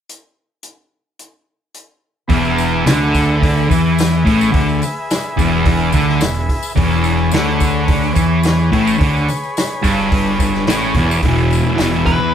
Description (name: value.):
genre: garage rock duo or trio.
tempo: 108 BPM.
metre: 4/4.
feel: straight.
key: E mixolydian.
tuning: A4 = 440 Hz.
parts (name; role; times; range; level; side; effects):
vintage drum kit; drums; 0.1-12.2 s; hi-hat, kick drum, snare drum; -19 LUFS; equal; none.
overdriven combo organ; sustained chords; 2.3-12.3 s; G#4 to E5; -24 LUFS; left 1 dB; none.
fuzz guitar; riff; 2.3-12.3 s; E2 to E3; -14 LUFS; equal; distortion.
fuzz fingered electric bass; bass; 2.3-12.1 s; E1 to E2; -22 LUFS; equal; overdrive.
tambourine; percussion; 2.3-12.2 s; none; -32 LUFS; left 6 dB; none.
octave-fuzz lead guitar; melody; 12.1-12.3 s; B4; -17 LUFS; left 2 dB; distortion.
room: moderate studio reverb, RT60 0.5 s.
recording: band playing live in one room.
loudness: -13 LUFS.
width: side -9 dB against mid.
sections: 0.1-2.3 A section; 2.3-11.2 B section; 11.2-12.3 C section.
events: none.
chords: 0.1 N.C.; 2.3 E.